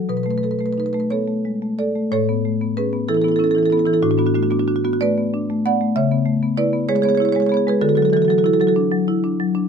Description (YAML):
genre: classical, contemporary piece for solo marimba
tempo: 58-64 BPM (dotted quarters)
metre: 6/8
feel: rubato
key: A major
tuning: A4 = 439 Hz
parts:
  - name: marimba with medium mallets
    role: solo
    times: 0.0-9.7 s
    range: A2 to F#5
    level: -16 LUFS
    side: equal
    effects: none
room: light reverb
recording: close, detailed microphones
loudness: -16 LUFS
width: side -6 dB against mid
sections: 0.0-2.1 A section; 2.1-9.7 B section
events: none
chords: 0.1 B9; 2.1 Aadd9; 4.0 Bm7/A; 5.9 C#m7; 7.8 Dadd9